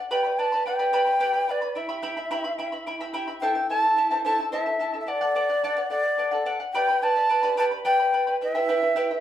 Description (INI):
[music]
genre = andean folk, Andean ensemble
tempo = 72 BPM (dotted quarters)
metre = 6/8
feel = straight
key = unclear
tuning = A4 = 439 Hz
[part]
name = charango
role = accompaniment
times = 0.0-9.2 s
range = E4 to B5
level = -27 LUFS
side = right 1 dB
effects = none
[part]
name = mellow large quena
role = melody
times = 0.1-9.2 s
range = D5 to A5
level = -23 LUFS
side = equal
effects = none
[sound]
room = wet studio reverb, RT60 0.6 s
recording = heard from further back in the room, faint mains hum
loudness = -22 LUFS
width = side -11 dB against mid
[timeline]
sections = 0.0-3.4 A section; 3.4-9.2 A section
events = none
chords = 0.1 G; 1.8 Em; 3.4 Am; 5.1 D; 6.7 G; 8.4 Em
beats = | 0.10 0.93 | 1.76 2.59 | 3.42 4.25 | 5.08 5.91 | 6.74 7.57 | 8.40